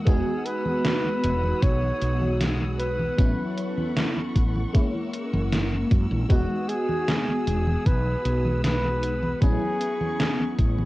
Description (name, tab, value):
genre	vaporwave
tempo	77 BPM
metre	4/4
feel	straight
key	E major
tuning	A4 = 441 Hz
part	FM electric piano with soft pad layer	accompaniment	0.0-10.9 s	F#3 to F#4	-28 LUFS	equal	phaser, ensemble chorus, cassette tape, analog delay
part	clear studio string section	sustained chords	0.0-10.9 s	A3 to E6	-40 LUFS	left 1 dB	cassette tape
part	warm flugelhorn	melody	0.1-10.7 s	F#4 to C#5	-29 LUFS	equal	cassette tape, analog delay
part	woody fretless electric bass	bass	0.1-10.9 s	E1 to F#2	-26 LUFS	equal	none
part	electronic kick drum	drums	0.1-10.7 s	none	-20 LUFS	equal	cassette tape
part	gated 80s digital drum machine	drums	0.1-10.9 s	congas, hi-hat, snare drum	-29 LUFS	equal	gated reverb, gated reverb snare, cassette tape
room	light reverb, digital ambience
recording	home recording on cassette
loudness	-22 LUFS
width	side -18 dB against mid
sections	0.0-10.9 A section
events	none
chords	0.1 Emaj9; 3.2 A69; 4.7 F#7; 6.3 Emaj9; 9.4 A69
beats	| 0.07 0.85 1.63 2.41 | 3.19 3.96 4.74 5.52 | 6.30 7.08 7.86 8.64 | 9.42 10.20